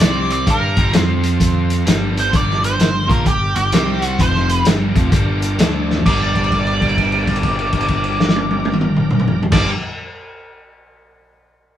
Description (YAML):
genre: blues rock power trio and southern rock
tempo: 129 BPM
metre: 4/4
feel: swing 64% on 8ths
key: G minor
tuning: A4 = 440 Hz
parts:
  - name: octave-fuzz lead guitar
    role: melody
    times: 0.0-9.7 s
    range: G4 to D5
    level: -20 LUFS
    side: right 1 dB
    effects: wah, distortion
  - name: overdriven tonewheel organ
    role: sustained chords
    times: 0.0-9.7 s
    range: F3 to D5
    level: -32 LUFS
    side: right 1 dB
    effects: none
  - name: overdriven electric guitar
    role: riff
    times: 0.0-9.7 s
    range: F2 to G4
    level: -22 LUFS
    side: right 1 dB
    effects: none
  - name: modern bright picked electric bass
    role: bass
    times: 0.0-9.7 s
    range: F1 to G2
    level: -21 LUFS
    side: equal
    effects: none
  - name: vintage drum kit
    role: drums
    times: 0.0-9.6 s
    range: crash cymbal, hi-hat, kick drum, snare drum, toms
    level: -17 LUFS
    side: equal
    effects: none
room: moderate studio reverb, RT60 0.7 s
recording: band playing live in one room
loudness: -14 LUFS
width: side -11 dB against mid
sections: 0.0-6.0 A section; 6.0-9.8 B section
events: drum fill 5.8; held note 6.0-9.5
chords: 0.0 C5; 0.5 Gm; 0.9 F5; 1.9 Gm; 3.7 C5; 4.2 F5; 4.7 Gm; 5.6 D5; 6.0 Gm